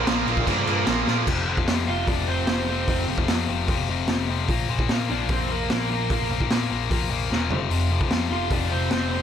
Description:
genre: punk rock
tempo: 149 BPM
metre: 4/4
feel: straight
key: unclear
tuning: A4 = 438 Hz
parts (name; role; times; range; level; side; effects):
- crunchy overdriven guitar; riff; 0.0-1.1 s; Bb2 to Bb3; -32 LUFS; right 2 dB; none
- distorted electric guitar; riff; 0.0-1.3 s; Bb2 to Bb3; -26 LUFS; right 15 dB; overdrive
- tight distorted guitar; riff; 0.0-9.2 s; F2 to Bb3; -27 LUFS; left 11 dB; distortion
- overdriven picked electric bass; bass; 0.0-9.2 s; E1 to Bb2; -28 LUFS; equal; none
- raw garage drum kit; drums; 0.1-9.0 s; crash cymbal, hi-hat, kick drum, snare drum, toms; -25 LUFS; equal; none
- high-gain lead guitar; melody; 1.9-9.2 s; Bb3 to F5; -30 LUFS; right 3 dB; distortion, digital delay
room: little or no reverb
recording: none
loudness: -21 LUFS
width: side -9 dB against mid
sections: 0.0-1.3 A section; 1.3-9.2 B section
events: drum fill 1.1, 7.3-7.7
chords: 0.0 Bb5; 1.3 F5; 4.5 Bb5; 7.5 F5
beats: 0.07 0.47 0.87 | 1.27 1.67 2.08 2.48 | 2.88 3.28 3.68 4.08 | 4.49 4.89 5.29 5.69 | 6.10 6.50 6.90 7.30 | 7.71 8.11 8.51 8.91

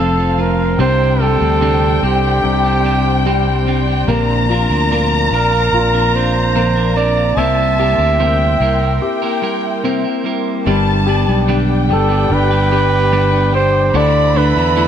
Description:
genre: pop ballad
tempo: 73 BPM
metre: 4/4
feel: straight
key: G major from 10.7 s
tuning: A4 = 440 Hz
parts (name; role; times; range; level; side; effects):
- mellow flugelhorn; melody; 0.0-14.9 s; G4 to E5; -17 LUFS; right 3 dB; tape echo
- dark studio violin section; second line; 0.0-14.9 s; F5 to B5; -21 LUFS; left 2 dB; none
- clear concert grand piano; accompaniment; 0.0-14.9 s; C3 to G4; -20 LUFS; left 5 dB; none
- airy breathy pad; sustained chords; 0.0-14.9 s; G4 to E6; -25 LUFS; left 1 dB; chorus
- clean electric guitar; arpeggios; 0.0-14.9 s; G2 to B4; -22 LUFS; right 8 dB; none
- fretless electric bass; bass; 0.0-14.9 s; F1 to E2; -16 LUFS; equal; none
room: light reverb, studio reverb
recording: none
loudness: -12 LUFS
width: side -9 dB against mid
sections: 0.0-10.7 A section; 10.7-14.9 A section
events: break 9.0-10.7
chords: 0.0 F; 0.8 Csus2; 4.1 Bbadd9; 7.4 C7; 10.7 G; 13.9 Dsus2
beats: | 0.79 1.62 2.44 3.26 | 4.08 4.90 5.72 6.55 | 7.37 8.19 9.01 9.84 | 10.66 11.48 12.30 13.12 | 13.94 14.77

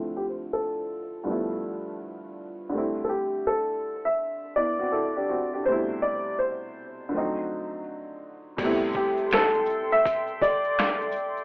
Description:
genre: lo-fi hip hop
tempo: 82 BPM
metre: 4/4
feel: swing 60% on 16ths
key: A minor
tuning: A4 = 437 Hz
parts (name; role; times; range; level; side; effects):
- dark upright piano; accompaniment; 0.0-11.4 s; G2 to A4; -30 LUFS; equal; low-pass filter
- warm upright piano; melody; 0.2-11.4 s; G4 to E5; -25 LUFS; equal; low-pass filter
- hollow soft pad; sustained chords; 8.6-11.4 s; A4 to C6; -33 LUFS; equal; chorus, low-pass filter
- boom bap sampler-style drum kit; drums; 8.6-11.3 s; crash cymbal, finger snaps, hi-hat, kick drum, shaker, snare drum; -29 LUFS; equal; none
- tube shaker; percussion; 8.6-11.4 s; none; -60 LUFS; left 1 dB; none
room: moderate small room reverb, RT60 0.6 s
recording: rough home demo mix, telephone sound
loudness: -24 LUFS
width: side -25 dB against mid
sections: 0.0-8.6 A section; 8.6-11.4 B section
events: filter sweep 0.0-8.6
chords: 0.0 Dm9; 1.3 G13; 2.7 C6; 5.7 Am7; 7.1 D7b9; 8.6 Am7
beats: 0.54 1.27 2.00 | 2.73 3.46 4.19 4.92 | 5.66 6.39 7.12 7.85 | 8.58 9.31 10.05 10.78

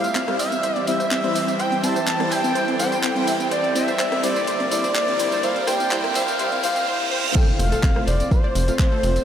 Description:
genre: progressive house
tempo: 125 BPM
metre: 4/4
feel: straight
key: F major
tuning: A4 = 440 Hz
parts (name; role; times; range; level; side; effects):
- expressive synth lead; melody; 0.0-9.2 s; C5 to A5; -24 LUFS; equal; chorus, sidechain pumping, analog delay
- clear studio violin section; second line; 0.0-9.2 s; C5 to A5; -32 LUFS; equal; none
- shimmering ambient pad; sustained chords; 0.0-9.2 s; C3 to C5; -29 LUFS; right 2 dB; chorus, built-in reverb, sidechain pumping
- wide unison pluck; arpeggios; 0.0-9.2 s; C4 to E5; -27 LUFS; right 1 dB; sidechain pumping, analog delay
- soft supersaw; stabs; 0.0-9.1 s; G3 to F5; -28 LUFS; left 2 dB; analog chorus, sidechain pumping, analog delay
- deep house drum kit; drums; 0.0-9.2 s; crash cymbal, handclaps, hi-hat, rim click, tambourine; -28 LUFS; equal; overdrive, high-pass filter on hats, high-pass filter on perc, high-pass filter on snare, high-pass filter on cymbals, high-pass filter on room
- riser, reverse cymbal and impact; sound effects; 0.0-9.2 s; none; -31 LUFS; right 2 dB; none
- electronic kick drum; drums; 7.4-8.9 s; none; -18 LUFS; equal; overdrive
- tight sequencer bass; bass; 7.6-9.2 s; F1; -21 LUFS; equal; sidechain pumping
room: wet huge ambient reverb, RT60 4.6 s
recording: dreamy mix soaked in reverb, high-pass filter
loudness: -18 LUFS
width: side -9 dB against mid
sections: 0.0-7.4 A section; 7.4-9.2 B section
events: build-up 0.0-7.4; riser 0.0-7.4; filter sweep on synth pluck 0.0-7.4; filter sweep 0.0-7.4; reverse cymbal 6.4-7.4; drop 7.4-9.2; impact 7.4-9.2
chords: 0.0 C; 3.5 Bb; 7.4 F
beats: 0.15 0.63 1.11 | 1.59 2.07 2.55 3.03 | 3.51 3.99 4.47 4.95 | 5.43 5.91 6.39 6.87 | 7.35 7.83 8.31 8.79

